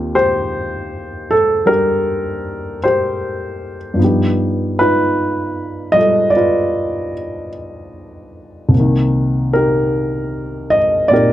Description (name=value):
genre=jazz ballad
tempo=51 BPM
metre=4/4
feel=swing 68% on 8ths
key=unclear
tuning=A4 = 438 Hz
part: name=dark baby grand piano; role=solo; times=0.0-11.3 s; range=C2 to Eb5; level=-14 LUFS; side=equal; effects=none
room=moderate small room reverb, RT60 0.5 s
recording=cassette tape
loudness=-14 LUFS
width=side -13 dB against mid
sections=0.0-11.3 A section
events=none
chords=0.0 Eb6; 4.0 G7b13; 8.7 Cm7